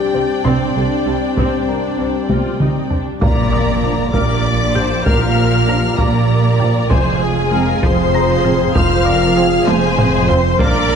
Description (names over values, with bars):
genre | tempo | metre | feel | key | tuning
cinematic, hybrid orchestral and electronic film score | 65 BPM (dotted quarters) | 6/8 | straight | F dorian | A4 = 440 Hz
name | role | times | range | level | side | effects
warm symphonic violin section | melody | 0.0-11.0 s | C5 to F6 | -24 LUFS | left 5 dB | none
rich symphonic violin section | second line | 0.0-11.0 s | Ab4 to G5 | -23 LUFS | left 3 dB | none
warm symphonic viola section | accompaniment | 0.0-11.0 s | D3 to D5 | -22 LUFS | right 1 dB | none
chorused pulse-width pad | sustained chords | 0.0-11.0 s | F3 to F5 | -24 LUFS | left 1 dB | none
dark French horn section | sustained chords | 0.0-11.0 s | Ab3 to G4 | -22 LUFS | left 4 dB | none
warm trombone section | sustained chords | 0.0-10.4 s | F3 to D4 | -25 LUFS | right 2 dB | none
resonant blip pluck | arpeggios | 0.1-10.8 s | C3 to G4 | -26 LUFS | right 2 dB | none
rich symphonic cello section | bass | 0.1-11.0 s | F2 to C3 | -21 LUFS | right 3 dB | none
warm symphonic double bass section | bass | 0.1-11.0 s | F1 to C2 | -21 LUFS | right 4 dB | none
felt-muted upright piano | texture | 0.4-11.0 s | Bb4 to Bb6 | -31 LUFS | left 2 dB | none
solo taiko drums | drums | 0.5-11.0 s | none | -20 LUFS | equal | none
impact | sound effects | 3.2-5.1 s | none | -24 LUFS | equal | none
room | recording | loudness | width
wet scoring stage reverb, RT60 1.6 s | dark, warm production | -13 LUFS | side -7 dB against mid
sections
0.0-3.2 A section; 3.2-11.0 B section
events
drum fill 2.3-3.2, 9.7-10.6; impact 3.2-5.1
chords
0.0 Csus2; 3.2 Bb6; 6.9 Fm